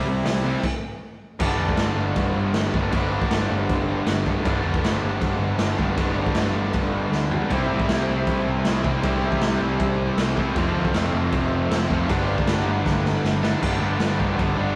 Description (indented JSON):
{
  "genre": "punk rock",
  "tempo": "157 BPM",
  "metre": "4/4",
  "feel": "straight",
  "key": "G mixolydian",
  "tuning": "A4 = 440 Hz",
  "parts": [
    { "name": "distorted electric guitar", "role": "riff", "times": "0.0-14.8 s", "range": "F2 to E4", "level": "-30 LUFS", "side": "equal", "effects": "distortion" },
    { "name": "high-gain distorted guitar", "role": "riff", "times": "0.0-14.8 s", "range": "F2 to E4", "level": "-28 LUFS", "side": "equal", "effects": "distortion" },
    { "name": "sludgy distorted guitar", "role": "riff", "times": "0.0-0.6, 7.5-14.8 s", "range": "F2 to C4", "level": "-32 LUFS", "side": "equal", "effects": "none" },
    { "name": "overdriven picked electric bass", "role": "bass", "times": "0.1-14.7 s", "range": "F1 to A2", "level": "-30 LUFS", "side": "equal", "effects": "none" },
    { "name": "raw garage drum kit", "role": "drums", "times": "0.3-14.5 s", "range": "crash cymbal, hi-hat, kick drum, snare drum, toms", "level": "-27 LUFS", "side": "equal", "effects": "none" }
  ],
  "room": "light reverb",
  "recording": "rough rehearsal-room recording",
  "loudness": "-22 LUFS",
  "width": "mono",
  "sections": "0.0-1.4 A section; 1.4-13.6 B section; 13.6-14.8 C section",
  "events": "stop 0.6-1.4; drum fill 7.1-7.5, 12.9-13.6",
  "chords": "0.0 C; 1.4 G; 7.5 C; 10.6 F; 12.1 G",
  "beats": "0.25 0.63 1.01 | 1.40 1.78 2.16 2.54 | 2.92 3.31 3.69 4.07 | 4.45 4.83 5.21 5.60 | 5.98 6.36 6.74 7.12 | 7.51 7.89 8.27 8.65 | 9.04 9.42 9.80 10.18 | 10.56 10.95 11.33 11.71 | 12.09 12.48 12.86 13.24 | 13.62 14.01 14.39"
}